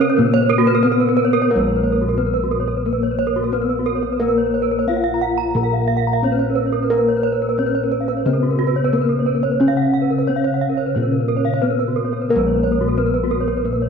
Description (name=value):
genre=Balinese gamelan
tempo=89 BPM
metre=4/4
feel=straight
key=Bb pelog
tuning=A4 = 440 Hz
part: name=gamelan-type bronze metallophone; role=melody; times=0.0-13.9 s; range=Bb3 to Bb4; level=-22 LUFS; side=equal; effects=none
part: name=clear trombone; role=second line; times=0.0-0.5 s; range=Bb3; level=-40 LUFS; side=left 5 dB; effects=none
part: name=gamelan-type bronze metallophone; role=accompaniment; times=0.0-13.9 s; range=Db3-30c to Cb4+20c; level=-28 LUFS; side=left 14 dB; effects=none
part: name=gamelan-type bronze metallophone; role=arpeggios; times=0.0-13.8 s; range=Gb4-20c to Bb5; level=-22 LUFS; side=right 9 dB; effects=none
part: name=gamelan-type bossed gongs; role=bass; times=0.0-13.9 s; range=Bb1 to Bb4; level=-20 LUFS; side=equal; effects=none
part: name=gamelan-type bronze metallophone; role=arpeggios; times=0.1-13.9 s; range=Gb4-20c to Bb5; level=-24 LUFS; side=left 11 dB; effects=none
room=moderate plate reverb, RT60 2.6 s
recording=1960s-style stereo with parts hard left and right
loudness=-16 LUFS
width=side -6 dB against mid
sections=0.0-1.5 A section; 1.5-13.9 B section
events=none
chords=none